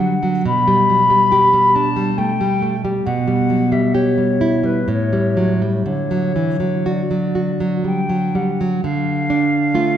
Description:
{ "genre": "romantic duo for flute and classical guitar", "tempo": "59-72 BPM", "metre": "3/4", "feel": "rubato", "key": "D major", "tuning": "A4 = 438 Hz", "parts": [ { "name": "silver concert flute", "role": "melody", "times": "0.0-10.0 s", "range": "B4 to B5", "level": "-19 LUFS", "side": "left 2 dB", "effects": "none" }, { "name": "nylon-string guitar", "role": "accompaniment", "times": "0.0-10.0 s", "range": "A2 to G4", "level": "-17 LUFS", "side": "right 1 dB", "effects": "none" } ], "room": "wet concert hall reverb, RT60 2.1 s", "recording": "recorded in a church or concert hall", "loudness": "-15 LUFS", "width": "side -10 dB against mid", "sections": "0.0-8.8 A section; 8.8-10.0 B section", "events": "none", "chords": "0.5 G/B; 3.0 Em/B; 4.9 A7; 5.9 D; 8.8 Dm" }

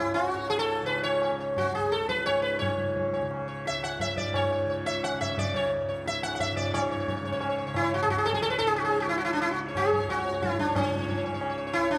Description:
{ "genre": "indian classical, Hindustani", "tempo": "176 BPM", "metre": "3/4", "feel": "straight", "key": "C# raga bhairavi", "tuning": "A4 = 439 Hz", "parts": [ { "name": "sitar", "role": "melody", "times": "0.0-12.0 s", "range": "C#4 to F#5", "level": "-29 LUFS", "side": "equal", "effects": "none" }, { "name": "tanpura", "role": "drone", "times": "0.0-12.0 s", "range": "C#2 to C#3", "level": "-38 LUFS", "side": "equal", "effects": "none" }, { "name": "tabla", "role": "percussion", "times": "0.2-12.0 s", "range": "none", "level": "-36 LUFS", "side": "equal", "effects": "none" } ], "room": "moderate scoring stage reverb, RT60 2.1 s", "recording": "none", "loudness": "-28 LUFS", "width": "mono", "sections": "0.0-6.7 A section; 6.7-12.0 B section", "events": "speeding up 0.0-12.0", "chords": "none" }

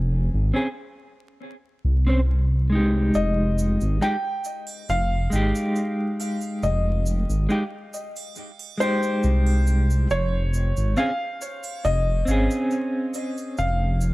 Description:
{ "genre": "trip hop", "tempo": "69 BPM", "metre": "4/4", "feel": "straight", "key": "F minor", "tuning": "A4 = 439 Hz", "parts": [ { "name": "clean electric guitar", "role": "accompaniment", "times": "0.0-14.1 s", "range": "Ab3 to C5", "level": "-25 LUFS", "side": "equal", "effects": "tremolo" }, { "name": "dark detuned saw bass", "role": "bass", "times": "0.0-14.1 s", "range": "F1 to C2", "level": "-21 LUFS", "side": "equal", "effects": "none" }, { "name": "egg shaker and triangle", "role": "percussion", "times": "3.1-14.1 s", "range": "none", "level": "-40 LUFS", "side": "right 5 dB", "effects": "none" }, { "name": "felt-muted upright piano", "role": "melody", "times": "3.2-14.1 s", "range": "C5 to G5", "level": "-28 LUFS", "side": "left 1 dB", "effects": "tape echo" } ], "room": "studio ambience", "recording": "dark, warm production, vinyl crackle", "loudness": "-20 LUFS", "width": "side -19 dB against mid", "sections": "0.0-14.1 A section", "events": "none", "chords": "0.0 Fm9; 10.1 Dbmaj9/F" }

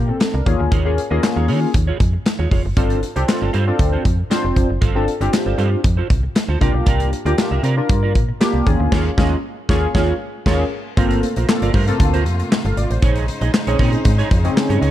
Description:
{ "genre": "early-eighties boogie funk", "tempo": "117 BPM", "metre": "4/4", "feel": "straight", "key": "G minor", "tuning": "A4 = 444 Hz", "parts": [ { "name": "chorused polysynth", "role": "accompaniment", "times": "0.0-14.8 s", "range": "Bb3 to F5", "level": "-22 LUFS", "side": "left 2 dB", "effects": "none" }, { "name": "slap-like FM bass", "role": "bass", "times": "0.0-14.9 s", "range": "F1 to Eb3", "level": "-19 LUFS", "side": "equal", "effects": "none" }, { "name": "clean electric guitar", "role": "riff", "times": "0.1-14.9 s", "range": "Eb4 to E5", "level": "-26 LUFS", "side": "right 7 dB", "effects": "analog chorus" }, { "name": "modern studio drum kit", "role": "drums", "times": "0.2-14.9 s", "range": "crash cymbal, handclaps, hi-hat, kick drum, snare drum", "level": "-19 LUFS", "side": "equal", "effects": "none" }, { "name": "rich studio string section", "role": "sustained chords", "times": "11.0-14.9 s", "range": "C3 to C5", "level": "-27 LUFS", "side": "left 1 dB", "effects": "none" } ], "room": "small room reverb", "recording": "dark, warm production", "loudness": "-15 LUFS", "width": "side -13 dB against mid", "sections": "0.0-11.0 A section; 11.0-14.9 B section", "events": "band accent 8.9-11.0", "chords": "0.5 Eb9sus4; 2.8 G9sus4; 6.6 C9sus4; 8.7 Eb9sus4; 11.0 Gm11; 13.0 Bbm11" }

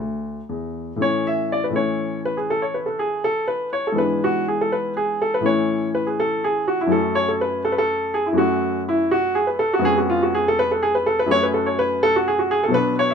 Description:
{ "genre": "classical, baroque-style suite movement for grand piano", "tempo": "82 BPM (dotted quarters)", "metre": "12/8", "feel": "rubato", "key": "A major", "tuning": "A4 = 440 Hz", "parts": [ { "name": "clear baby grand piano", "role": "solo", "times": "0.0-13.1 s", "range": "D2 to E5", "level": "-18 LUFS", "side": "equal", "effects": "none" } ], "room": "light reverb", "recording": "none", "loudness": "-18 LUFS", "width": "side -6 dB against mid", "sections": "0.0-1.0 A section; 1.0-13.1 A section", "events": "none", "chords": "0.0 F#m; 1.0 A; 4.0 E7/G#; 5.5 A; 6.9 F#m; 9.8 C#7/E#; 11.3 F#m" }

